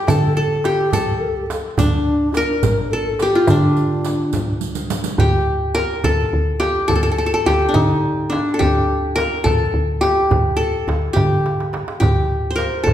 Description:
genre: Arabic maqam ensemble.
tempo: 70 BPM (dotted quarters).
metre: 6/8.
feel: straight.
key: D maqam nahawand, D maqam hijaz from 5.2 s.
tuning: A4 = 441 Hz.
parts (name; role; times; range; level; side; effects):
qanun; melody; 0.0-12.9 s; D4 to C5; -19 LUFS; left 1 dB; none.
breathy mellow low ney; second line; 0.0-4.9 s; D4 to Bb4; -23 LUFS; left 1 dB; none.
woody FM bass; bass; 0.1-12.9 s; A1 to D3; -21 LUFS; equal; none.
darbuka; percussion; 0.1-12.9 s; none; -25 LUFS; right 3 dB; none.
frame drum; percussion; 0.1-12.9 s; none; -26 LUFS; equal; none.
riq; percussion; 0.1-5.2 s; none; -29 LUFS; right 4 dB; none.
room: wet recital hall reverb, RT60 1.6 s.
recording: recorded in a church or concert hall.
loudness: -16 LUFS.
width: side -11 dB against mid.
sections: 0.0-5.2 A section; 5.2-12.9 B section.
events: drum fill 4.6-5.2, 11.4-12.0.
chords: none.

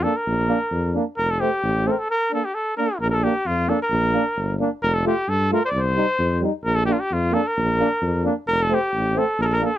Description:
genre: balkan folk, Balkan brass band.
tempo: 132 BPM.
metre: 2/4.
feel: straight.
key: Bb major.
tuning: A4 = 435 Hz.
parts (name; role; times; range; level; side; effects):
warm trumpet; melody; 0.0-9.8 s; F4 to D5; -22 LUFS; equal; none.
clear trombone; accompaniment; 0.0-9.7 s; C4 to F4; -26 LUFS; left 4 dB; none.
warm euphonium; accompaniment; 0.0-9.7 s; G3 to Bb3; -25 LUFS; right 7 dB; none.
mellow tuba; bass; 0.0-9.6 s; F1 to G2; -23 LUFS; equal; none.
room: little or no reverb.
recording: close, detailed microphones.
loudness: -19 LUFS.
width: side -12 dB against mid.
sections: 0.0-3.0 A section; 3.0-9.8 A section.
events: none.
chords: 0.0 Bb; 1.2 F; 2.1 Bb; 4.8 F; 5.7 Cm; 6.6 Bb; 8.5 F.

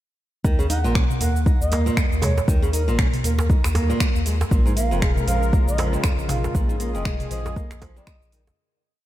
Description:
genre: afro house.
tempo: 118 BPM.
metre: 4/4.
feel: swing 58% on 16ths.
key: unclear.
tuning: A4 = 440 Hz.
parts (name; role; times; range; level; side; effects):
flamenco guitar; arpeggios; 0.4-8.4 s; F2 to Eb4; -27 LUFS; right 1 dB; sidechain pumping, ping-pong delay.
round analog bass; bass; 0.4-8.5 s; F1 to Eb2; -23 LUFS; equal; tube saturation, sidechain pumping.
electronic kick drum; drums; 0.4-8.2 s; none; -20 LUFS; equal; overdrive.
afro-pop drum kit; drums; 0.5-8.6 s; finger snaps, hi-hat, shaker, toms; -28 LUFS; equal; overdrive.
reedy bass bansuri; melody; 0.7-8.3 s; Bb4 to Gb5; -31 LUFS; right 2 dB; ping-pong delay.
djembe; percussion; 1.2-8.6 s; none; -30 LUFS; right 2 dB; none.
warm analog pad; sustained chords; 4.5-8.6 s; Db3 to Bb4; -30 LUFS; left 1 dB; chorus, sidechain pumping.
room: light reverb.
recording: none.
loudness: -18 LUFS.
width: side -14 dB against mid.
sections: 0.4-8.6 drop.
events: drop 0.4-8.6; fade-out 5.9-8.6.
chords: 0.4 Eb5; 4.5 Bbm7.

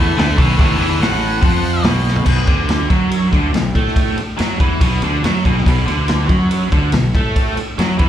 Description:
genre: blues rock power trio and southern rock.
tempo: 142 BPM.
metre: 4/4.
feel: straight.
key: B minor.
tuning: A4 = 439 Hz.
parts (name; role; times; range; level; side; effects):
octave-fuzz lead guitar; melody; 0.0-1.8 s; D5 to A5; -20 LUFS; equal; distortion, slapback echo.
biting overdriven guitar; riff; 0.0-8.1 s; A2 to A3; -18 LUFS; right 1 dB; none.
fuzz fingered electric bass; bass; 0.0-8.1 s; A1 to A2; -18 LUFS; equal; overdrive.
vintage drum kit; drums; 0.2-8.1 s; crash cymbal, hi-hat, kick drum, ride cymbal, snare drum, toms; -17 LUFS; equal; none.
room: small room ambience.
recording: live gig heard through the venue's PA, club reverb.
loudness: -13 LUFS.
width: side -11 dB against mid.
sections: 0.0-2.3 A section; 2.3-8.1 B section.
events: lead electric guitar solo 0.0-2.3; drum fill 2.1.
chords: 0.0 Bm.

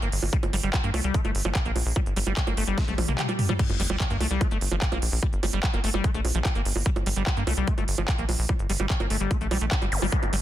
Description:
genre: psychedelic trance.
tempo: 147 BPM.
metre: 4/4.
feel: straight.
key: G minor.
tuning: A4 = 438 Hz.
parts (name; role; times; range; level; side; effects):
liquid acid bass; riff; 0.0-10.4 s; F3 to G4; -31 LUFS; moving between left 5 dB and right 4 dB; chorus, auto-pan, sidechain pumping, dub echo.
tight sequencer bass; bass; 0.0-10.4 s; G1 to G2; -27 LUFS; equal; none.
big-room dance drum kit; drums; 0.0-10.4 s; bongos, crash cymbal, handclaps, hi-hat, snare drum, toms; -29 LUFS; right 2 dB; none.
electronic kick drum; drums; 0.3-10.2 s; none; -27 LUFS; equal; none.
swell, sub drop and zap; sound effects; 2.9-5.2, 9.9-10.0 s; none; -34 LUFS; left 1 dB; none.
room: light reverb.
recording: dense, heavily limited modern master.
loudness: -23 LUFS.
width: side -13 dB against mid.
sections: 0.0-3.6 A section; 3.6-10.4 B section.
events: drum fill 2.8-3.6; swell 2.9-3.6; drop 3.6-10.4; impact 3.6-5.2.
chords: 0.0 G5.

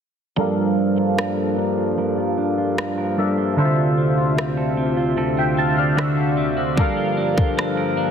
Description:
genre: contemporary R&B.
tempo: 75 BPM.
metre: 4/4.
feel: straight.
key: unclear.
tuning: A4 = 440 Hz.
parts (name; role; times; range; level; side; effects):
warm analog keys; accompaniment; 0.4-8.1 s; D3 to A5; -21 LUFS; left 1 dB; chorus, phaser, low-pass filter.
pedal harmonium; sustained chords; 0.4-8.1 s; D2 to F#4; -24 LUFS; left 3 dB; low-pass filter.
clean electric guitar; arpeggios; 0.4-8.1 s; D3 to Bb4; -23 LUFS; right 5 dB; spring reverb, low-pass filter, tape echo.
trap drum kit; drums; 1.2-7.8 s; kick drum, rim click; -24 LUFS; equal; soft clipping on snare.
room: light reverb, digital ambience.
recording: dense, heavily limited modern master.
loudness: -18 LUFS.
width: side -7 dB against mid.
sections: 0.4-8.1 A section.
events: filter sweep 0.4-8.1.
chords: 0.4 Gm7; 3.6 Dm7; 6.0 D7; 6.8 Gm7.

